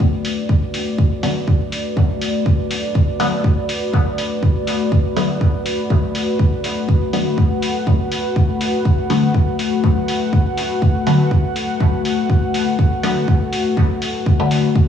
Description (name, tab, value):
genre	dub techno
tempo	122 BPM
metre	4/4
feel	swing 54% on 16ths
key	B minor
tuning	A4 = 440 Hz
part	dark analog pad	sustained chords	0.0-14.9 s	A3 to F#5	-21 LUFS	left 2 dB	chorus, sidechain pumping
part	electronic kick drum	drums	0.0-14.9 s	none	-16 LUFS	right 1 dB	small room ambience
part	electronic hi-hat	drums	0.2-14.6 s	none	-28 LUFS	equal	small room ambience, dub echo
part	filtered dub chord stab	stabs	1.2-14.7 s	D3 to B3	-21 LUFS	left 1 dB	phaser, sidechain pumping, dub echo
room	light reverb, digital ambience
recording	played on a big sound system in a bare room, stone room reverb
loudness	-15 LUFS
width	side -8 dB against mid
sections	0.0-14.9 A section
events	none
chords	0.0 Bm7